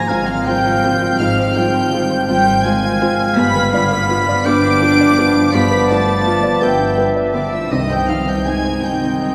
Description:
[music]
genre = cinematic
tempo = 55 BPM (dotted quarters)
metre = 6/8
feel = rubato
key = unclear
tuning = A4 = 439 Hz
[part]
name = warm symphonic violin section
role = melody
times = 0.0-9.3 s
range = D6 to D7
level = -26 LUFS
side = equal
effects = none
[part]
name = clear oboe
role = second line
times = 0.0-9.3 s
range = D5 to G5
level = -25 LUFS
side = equal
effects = none
[part]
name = small flute group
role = second line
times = 0.0-9.3 s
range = D5 to D6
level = -24 LUFS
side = equal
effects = none
[part]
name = warm studio violin section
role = second line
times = 0.0-9.3 s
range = D5 to D6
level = -28 LUFS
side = equal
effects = none
[part]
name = felt-muted upright piano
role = accompaniment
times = 0.0-9.3 s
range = C2 to D5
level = -24 LUFS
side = equal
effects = none
[part]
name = mellow French horn section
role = sustained chords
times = 0.0-9.3 s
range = Eb3 to C4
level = -24 LUFS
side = equal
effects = none
[part]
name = concert harp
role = arpeggios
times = 0.0-9.3 s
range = G2 to C6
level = -29 LUFS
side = equal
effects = none
[part]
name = warm symphonic cello section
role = bass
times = 0.0-9.3 s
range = D3 to D4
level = -23 LUFS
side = equal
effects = none
[part]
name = dark symphonic viola section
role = accompaniment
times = 0.1-9.3 s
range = B3 to F4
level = -28 LUFS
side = equal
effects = none
[part]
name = dark symphonic double bass section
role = bass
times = 0.1-9.3 s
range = G1 to C2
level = -26 LUFS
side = equal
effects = none
[sound]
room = wet cathedral reverb, RT60 4.9 s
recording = recorded in a church or concert hall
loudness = -15 LUFS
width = mono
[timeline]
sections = 0.0-9.3 A section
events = none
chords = 0.0 Fm/Ab; 3.4 G7; 7.7 Cm

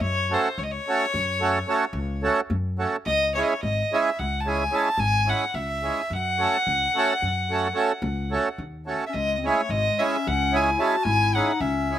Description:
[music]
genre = balkan folk, Balkan wedding band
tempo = 217 BPM (eighths)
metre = 11/8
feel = straight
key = F# minor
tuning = A4 = 441 Hz
[part]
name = clear fiddle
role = melody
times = 0.0-12.0 s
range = B#4 to A5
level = -25 LUFS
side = left 1 dB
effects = slapback echo
[part]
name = upright bass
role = bass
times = 0.0-11.9 s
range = G#1 to F#2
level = -28 LUFS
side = left 1 dB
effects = none
[part]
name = accordion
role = accompaniment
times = 0.3-12.0 s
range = G#3 to A4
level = -24 LUFS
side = right 3 dB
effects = slapback echo
[part]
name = mellow clarinet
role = second line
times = 9.1-12.0 s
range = G#3 to F#4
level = -28 LUFS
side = left 7 dB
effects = slapback echo
[sound]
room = little or no reverb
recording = recorded outdoors, with no room sound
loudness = -21 LUFS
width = side -11 dB against mid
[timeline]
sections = 0.0-9.1 A section; 9.1-12.0 A section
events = none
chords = 0.0 F#m; 3.1 C#m; 6.1 F#m; 9.1 C#m

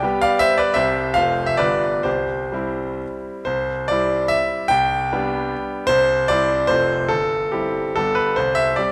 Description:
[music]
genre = classical, romantic triple-time dance for piano with dotted rhythms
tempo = 120-169 BPM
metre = 3/4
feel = rubato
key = C major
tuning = A4 = 440 Hz
[part]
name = bright concert grand piano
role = solo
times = 0.0-8.9 s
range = F1 to G5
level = -20 LUFS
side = equal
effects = none
[sound]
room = wet scoring stage reverb, RT60 1.8 s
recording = none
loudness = -20 LUFS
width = mono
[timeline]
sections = 0.0-3.5 A section; 3.5-8.9 B section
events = none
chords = 0.0 G; 0.8 C; 1.2 F; 1.6 G7; 2.1 C; 4.7 G/C; 5.9 C; 6.7 F; 7.1 C/G; 8.0 G; 8.4 C

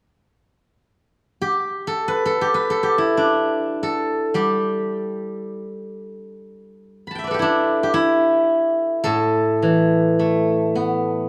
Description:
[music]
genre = chinese traditional, Chinese solo plucked strings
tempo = free time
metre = none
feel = none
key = G gong mode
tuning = A4 = 440 Hz
[part]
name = steel-string zither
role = solo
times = 1.4-11.3 s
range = A2 to B5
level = -20 LUFS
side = equal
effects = none
[sound]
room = light reverb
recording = dark, warm production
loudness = -20 LUFS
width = mono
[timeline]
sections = 0.8-11.3 A section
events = none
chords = none

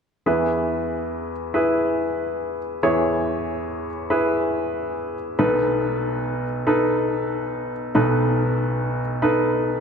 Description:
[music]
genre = pop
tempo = 94 BPM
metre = 4/4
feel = swing 56% on 16ths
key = E major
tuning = A4 = 440 Hz
[part]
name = clear baby grand piano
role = accompaniment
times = 0.3-9.8 s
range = B1 to C#5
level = -20 LUFS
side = equal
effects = none
[sound]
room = wet plate reverb, RT60 3.2 s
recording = dreamy mix soaked in reverb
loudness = -20 LUFS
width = side -6 dB against mid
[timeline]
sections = 0.3-9.8 A section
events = none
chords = 0.3 E; 5.4 B7

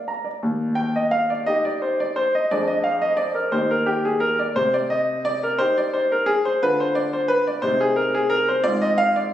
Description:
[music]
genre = classical-period piano sonatina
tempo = 58 BPM (dotted quarters)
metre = 6/8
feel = straight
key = Eb major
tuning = A4 = 440 Hz
[part]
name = clear grand piano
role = solo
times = 0.0-9.3 s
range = Eb2 to Bb5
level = -19 LUFS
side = equal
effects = none
[sound]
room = moderate recital hall reverb, RT60 1.4 s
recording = recorded on a phone in the room, studio reverb, compression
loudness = -19 LUFS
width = side -11 dB against mid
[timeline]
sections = 0.4-9.3 A section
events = none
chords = 0.4 Eb; 2.5 Ddim/F; 3.5 Eb; 4.6 Cm; 6.6 Dm7; 7.6 Cm; 8.6 Fm/Ab

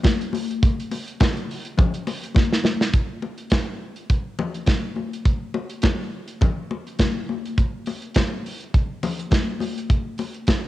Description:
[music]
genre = disco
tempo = 104 BPM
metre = 4/4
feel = swing 56% on 16ths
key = none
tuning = none
[part]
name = modern studio drum kit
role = drums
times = 0.0-10.6 s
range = hi-hat, kick drum, snare drum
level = -20 LUFS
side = right 1 dB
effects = cassette tape
[part]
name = congas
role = percussion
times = 0.0-10.6 s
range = none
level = -28 LUFS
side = left 5 dB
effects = none
[sound]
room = light reverb, small room ambience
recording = home recording on cassette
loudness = -21 LUFS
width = side -15 dB against mid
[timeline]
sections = 0.0-2.9 A section; 2.9-10.7 B section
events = drum fill 2.4-2.9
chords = none

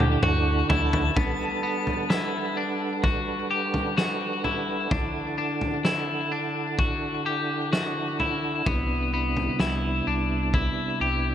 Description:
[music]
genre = dream pop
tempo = 64 BPM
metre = 4/4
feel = straight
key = G major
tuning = A4 = 440 Hz
[part]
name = mellow tonewheel organ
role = sustained chords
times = 0.0-11.3 s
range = C3 to F#5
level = -29 LUFS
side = right 3 dB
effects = chorus vibrato, stopped rotary speaker
[part]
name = clean electric guitar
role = arpeggios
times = 0.0-11.3 s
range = B3 to G4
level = -27 LUFS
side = left 4 dB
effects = wide subtle chorus, ping-pong delay
[part]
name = saturated sub bass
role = bass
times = 0.0-1.1, 8.7-11.3 s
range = C2 to D2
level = -27 LUFS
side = equal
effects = none
[part]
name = loose indie drum kit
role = drums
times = 0.0-10.8 s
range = kick drum, snare drum, toms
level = -28 LUFS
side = equal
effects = none
[part]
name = twinkling granular texture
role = texture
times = 0.7-1.6 s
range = A5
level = -38 LUFS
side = right 1 dB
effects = built-in reverb, ping-pong delay
[sound]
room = light reverb, small room ambience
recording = none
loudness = -23 LUFS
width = side -10 dB against mid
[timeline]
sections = 0.0-1.2 A section; 1.2-11.3 B section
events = drum fill 0.0-1.2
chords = 0.0 Dadd9; 1.2 Gmaj7; 4.9 Dadd9; 8.7 Cmaj7

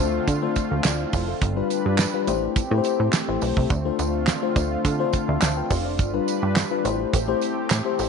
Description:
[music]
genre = early-eighties boogie funk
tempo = 105 BPM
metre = 4/4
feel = straight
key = D dorian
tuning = A4 = 440 Hz
[part]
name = mellow FM electric piano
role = accompaniment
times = 0.0-8.1 s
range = G3 to C6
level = -25 LUFS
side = left 11 dB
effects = chorus
[part]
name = lush unison pad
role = sustained chords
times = 0.0-8.1 s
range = D3 to B4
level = -28 LUFS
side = right 2 dB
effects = chorus
[part]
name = plucky analog bass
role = bass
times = 0.0-8.1 s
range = F1 to D3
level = -25 LUFS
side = right 2 dB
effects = none
[part]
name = damped 70s drum kit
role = drums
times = 0.3-8.1 s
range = handclaps, hi-hat, kick drum, snare drum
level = -24 LUFS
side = right 2 dB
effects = none
[part]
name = tambourine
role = percussion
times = 0.3-8.1 s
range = none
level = -36 LUFS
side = right 17 dB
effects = none
[sound]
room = light reverb, small room ambience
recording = 1960s-style stereo with parts hard left and right, nothing above 11.0 kHz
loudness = -20 LUFS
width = side -6 dB against mid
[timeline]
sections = 0.0-8.1 A section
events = none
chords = 0.0 Dm7; 1.4 G7; 2.3 Am7; 3.7 Dm7; 6.0 G7; 6.8 Am7

